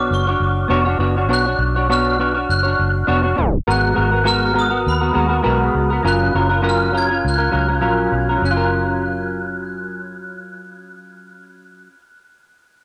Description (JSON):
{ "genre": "indie pop, bedroom pop", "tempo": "101 BPM", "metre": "4/4", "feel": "swing 55% on 16ths", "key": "F# major", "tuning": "A4 = 440 Hz", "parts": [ { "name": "glockenspiel with brass mallets", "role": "melody", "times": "0.0-11.7 s", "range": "B5 to G#6", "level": "-25 LUFS", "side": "equal", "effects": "ensemble chorus, tape echo" }, { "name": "semi-hollow electric guitar", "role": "accompaniment", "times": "0.0-12.1 s", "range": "F#3 to C#5", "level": "-21 LUFS", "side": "equal", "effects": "ensemble chorus, vibrato effect" }, { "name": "vintage muted fingered electric bass", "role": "bass", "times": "0.0-11.7 s", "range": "E#1 to D#2", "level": "-23 LUFS", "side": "equal", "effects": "transformer saturation" } ], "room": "light reverb, small room ambience", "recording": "dry, gritty hardware recording, transformer saturation, cassette tape, tape stop", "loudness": "-18 LUFS", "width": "mono", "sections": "0.0-3.7 A section; 3.7-8.4 B section; 8.4-10.8 C section", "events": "tape stop 3.4", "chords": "0.0 Bmadd9; 3.7 G#m9; 6.1 F#maj7", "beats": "0.12 0.71 | 1.31 1.90 2.50 3.09 | 3.68 4.28 4.87 5.46 | 6.06 6.65 7.25 7.84 | 8.44 9.03 9.62 10.22" }